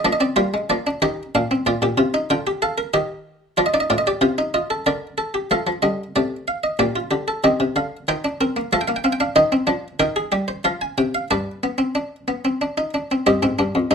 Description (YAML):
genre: classical, baroque-style 4-part fugue for harpsichord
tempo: 93 BPM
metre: 3/4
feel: straight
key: C minor from 9.4 s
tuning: A4 = 439 Hz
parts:
  - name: buff-stop harpsichord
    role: solo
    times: 0.0-13.9 s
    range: F2 to Ab5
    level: -18 LUFS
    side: equal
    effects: none
room: moderate studio reverb, RT60 0.6 s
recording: none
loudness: -19 LUFS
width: side -6 dB against mid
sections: 0.0-5.5 A section; 5.5-13.3 B section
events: none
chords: 0.0 Bb7; 1.0 Eb; 1.7 Bb; 2.9 Eb; 3.6 F7; 4.9 Bb/D; 5.5 Dm; 6.8 Gm7/Bb; 7.4 Cm; 8.7 F; 9.4 Cm/Eb; 10.6 Fmadd9; 11.3 G; 13.3 Cm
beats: 0.38 1.02 | 1.67 2.30 2.94 | 3.58 4.22 4.86 | 5.51 6.16 6.80 | 7.44 8.08 8.72 | 9.36 10.00 10.65 | 11.30 11.95 12.61 | 13.26 13.91